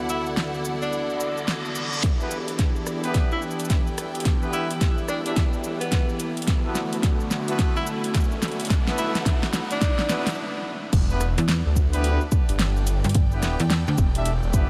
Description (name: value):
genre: glitch hop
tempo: 108 BPM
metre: 4/4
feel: swing 62% on 16ths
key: E minor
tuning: A4 = 440 Hz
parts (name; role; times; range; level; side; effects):
- warm analog pad; sustained chords; 0.0-10.3 s; D2 to G4; -34 LUFS; equal; chorus, sidechain pumping
- rich symphonic string section; texture; 0.0-14.7 s; E4 to G5; -38 LUFS; equal; sidechain pumping
- breathy tenor saxophone; melody; 0.1-10.3 s; B3 to E4; -34 LUFS; equal; vintage 12-bit sampler grit, low-pass filter, delay
- pop drum kit; drums; 0.1-14.7 s; crash cymbal, hi-hat, rim click, shaker, snare drum; -32 LUFS; equal; small room reverb
- reverse cymbal and riser; sound effects; 1.2-10.4 s; none; -39 LUFS; equal; none
- phased detuned saw bass; bass; 2.0-14.7 s; E1 to E2; -31 LUFS; equal; phaser, high-pass filter
- electronic kick drum; drums; 2.0-14.7 s; none; -24 LUFS; equal; small room reverb
- clear horn section; stabs; 2.2-14.7 s; B3 to E5; -35 LUFS; equal; sidechain pumping, low-pass filter, delay
- slap-like FM bass; bass; 11.4-14.0 s; G1 to E2; -25 LUFS; equal; none
room: moderate huge ambient reverb, RT60 7.3 s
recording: dreamy mix soaked in reverb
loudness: -24 LUFS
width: mono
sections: 0.0-2.0 A section; 2.0-10.9 B section; 10.9-14.7 C section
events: reverse cymbal 1.2-2.0; build-up 2.0-10.9; drum fill 2.0-10.4; stop 10.4-10.9; drop 10.9-14.7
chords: 0.0 D6; 2.0 Em7; 6.5 D6; 10.9 Em7